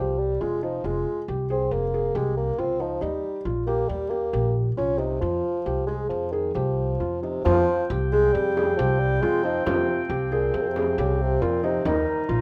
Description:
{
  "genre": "contemporary instrumental, chamber music in an uneven meter",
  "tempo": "137 BPM",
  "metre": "5/4",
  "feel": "straight",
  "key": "F minor",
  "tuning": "A4 = 439 Hz",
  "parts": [
    { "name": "dark bassoon", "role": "melody", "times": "0.0-12.3 s", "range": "Bb2 to Db4", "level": "-28 LUFS", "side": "equal", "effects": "none" },
    { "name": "felt-muted upright piano", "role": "arpeggios", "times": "0.0-12.4 s", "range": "Eb4 to Ab4", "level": "-30 LUFS", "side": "equal", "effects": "none" },
    { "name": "upright bass", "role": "bass", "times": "0.0-12.4 s", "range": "F1 to F2", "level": "-30 LUFS", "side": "equal", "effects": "none" },
    { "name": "warm woodwind section", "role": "sustained chords", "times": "7.4-12.4 s", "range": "C3 to G5", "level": "-34 LUFS", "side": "equal", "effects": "none" },
    { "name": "frame drum", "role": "percussion", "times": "7.5-12.4 s", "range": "none", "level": "-36 LUFS", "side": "equal", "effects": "none" }
  ],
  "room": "light reverb",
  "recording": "none",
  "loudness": "-24 LUFS",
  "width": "mono",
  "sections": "0.0-7.5 A section; 7.5-12.4 A section",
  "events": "none",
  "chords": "0.0 Fmadd9; 3.0 Eb6; 5.2 Fmadd9; 11.9 Bbsus2",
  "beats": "0.41 | 0.84 1.28 1.72 2.15 2.58 | 3.02 3.46 3.89 4.33 4.77 | 5.22 5.66 6.10 6.55 7.00 | 7.45 7.90 8.35 8.79 9.23 | 9.66 10.10 10.54 10.98 11.42 | 11.85 12.29"
}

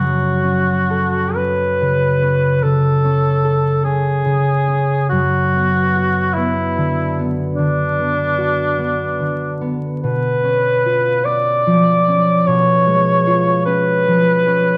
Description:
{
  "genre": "classical, romantic duo for cor anglais and harp",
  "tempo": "41-51 BPM (dotted quarters)",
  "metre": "12/8",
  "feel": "rubato",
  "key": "F# minor",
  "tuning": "A4 = 440 Hz",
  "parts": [
    { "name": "mellow cor anglais", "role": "melody", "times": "0.0-14.8 s", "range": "D4 to D5", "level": "-19 LUFS", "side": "equal", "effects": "none" },
    { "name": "concert harp", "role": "accompaniment", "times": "0.0-14.8 s", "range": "F#2 to A4", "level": "-20 LUFS", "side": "equal", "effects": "none" }
  ],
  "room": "wet recital hall reverb, RT60 1.4 s",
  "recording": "dark, warm production, vinyl crackle",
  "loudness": "-16 LUFS",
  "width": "mono",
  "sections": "0.0-14.8 A section",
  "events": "none",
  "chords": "0.0 F#m; 5.1 Bm/F#; 10.0 C#7/B",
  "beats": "1.37 2.64 3.85 | 5.10 6.34 7.58 8.79 | 10.03 11.26 12.48 13.67"
}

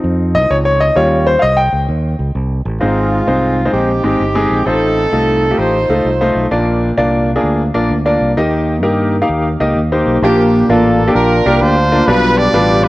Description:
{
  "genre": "uptempo gospel",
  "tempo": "130 BPM",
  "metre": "4/4",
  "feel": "swing 66% on 8ths",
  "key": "Ab major",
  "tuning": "A4 = 440 Hz",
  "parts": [
    { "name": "clear concert grand piano", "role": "accompaniment", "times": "0.0-12.9 s", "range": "Ab2 to G5", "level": "-13 LUFS", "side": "left 1 dB", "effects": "cassette tape" },
    { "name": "fingered electric bass", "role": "bass", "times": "0.0-12.9 s", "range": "G1 to G2", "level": "-17 LUFS", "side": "equal", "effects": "none" },
    { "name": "warm horn section", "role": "melody", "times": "2.8-6.5, 10.2-12.9 s", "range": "Ab3 to D5", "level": "-14 LUFS", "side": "right 1 dB", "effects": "cassette tape" }
  ],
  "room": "light reverb, small room ambience",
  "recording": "home recording on cassette",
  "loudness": "-11 LUFS",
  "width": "side -18 dB against mid",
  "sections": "0.0-2.8 A section; 2.8-10.2 B section; 10.2-12.9 C section",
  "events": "grand piano solo 0.0-2.8",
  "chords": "0.0 Dbmaj7; 1.0 Eb7; 2.8 Ab; 4.7 F7/A; 6.5 Bb; 8.4 Eb; 10.2 Bb; 12.1 G7",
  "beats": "0.03 0.49 | 0.96 1.42 1.88 2.34 | 2.80 3.27 3.73 4.19 | 4.66 5.12 5.58 6.05 | 6.51 6.98 7.44 7.90 | 8.37 8.83 9.30 9.76 | 10.22 10.69 11.15 11.62 | 12.08 12.54"
}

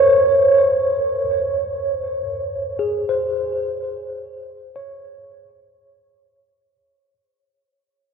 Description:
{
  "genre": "ambient",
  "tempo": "free time",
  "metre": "none",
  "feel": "none",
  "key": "unclear",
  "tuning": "A4 = 438 Hz",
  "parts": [
    { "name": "mellow tine electric piano", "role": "solo", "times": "0.0-7.1 s", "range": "Ab4 to Db5", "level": "-17 LUFS", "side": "right 1 dB", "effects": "medium stereo tremolo, diffuse ambient delay" }
  ],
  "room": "wet huge ambient reverb, RT60 8.5 s",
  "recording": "cassette tape",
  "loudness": "-17 LUFS",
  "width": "side -6 dB against mid",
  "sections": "0.0-6.7 A section",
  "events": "fade-out 0.0-6.7",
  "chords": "0.0 Bbm9",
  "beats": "free time"
}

